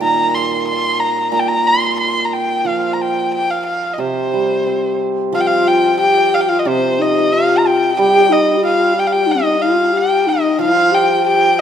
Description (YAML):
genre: chinese traditional, Chinese chamber ensemble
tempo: 91 BPM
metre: 4/4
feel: rubato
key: C yu mode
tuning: A4 = 440 Hz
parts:
  - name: warm erhu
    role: melody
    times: 0.0-11.6 s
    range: C5 to C6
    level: -15 LUFS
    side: left 1 dB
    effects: none
  - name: hammered dulcimer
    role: accompaniment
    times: 0.0-11.6 s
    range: Bb2 to C4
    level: -20 LUFS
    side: right 3 dB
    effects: none
  - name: mellow low xiao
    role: second line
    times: 5.3-11.6 s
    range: C4 to G4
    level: -16 LUFS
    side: left 3 dB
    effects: none
room: moderate scoring stage reverb, RT60 1.5 s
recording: none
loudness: -13 LUFS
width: side -9 dB against mid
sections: 0.0-5.3 A section; 5.3-11.6 B section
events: none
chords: none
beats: | 0.02 0.67 1.33 1.99 | 2.66 3.33 3.99 4.67 | 5.34 6.01 6.68 7.34 | 8.00 8.65 9.31 9.96 | 10.61 11.26